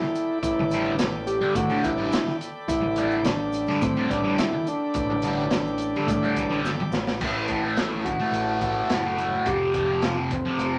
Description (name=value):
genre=psychedelic rock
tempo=106 BPM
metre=4/4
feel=straight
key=unclear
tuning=A4 = 439 Hz
part: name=combo organ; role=melody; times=0.0-10.8 s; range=C4 to G4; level=-28 LUFS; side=equal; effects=none
part: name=bright tonewheel organ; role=sustained chords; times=0.0-7.2 s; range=A4 to B5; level=-38 LUFS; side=equal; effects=slow rotary speaker, overdrive
part: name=thick fuzz guitar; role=riff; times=0.0-10.8 s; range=F2 to A3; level=-30 LUFS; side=equal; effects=distortion, phaser
part: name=crunchy breakbeat drum kit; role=drums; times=0.0-10.7 s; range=crash cymbal, hi-hat, kick drum, snare drum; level=-32 LUFS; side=equal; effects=none
part: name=tube shaker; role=percussion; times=0.2-7.1 s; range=none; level=-54 LUFS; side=equal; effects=none
part: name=growling picked electric bass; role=bass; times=0.4-10.8 s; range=F1 to A2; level=-34 LUFS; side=equal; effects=overdrive
room=wet club reverb, RT60 0.5 s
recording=none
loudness=-25 LUFS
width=mono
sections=0.0-7.2 A section; 7.2-10.8 B section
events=drum fill 6.6-7.2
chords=0.0 Gadd9/A; 7.2 A5; 9.5 F5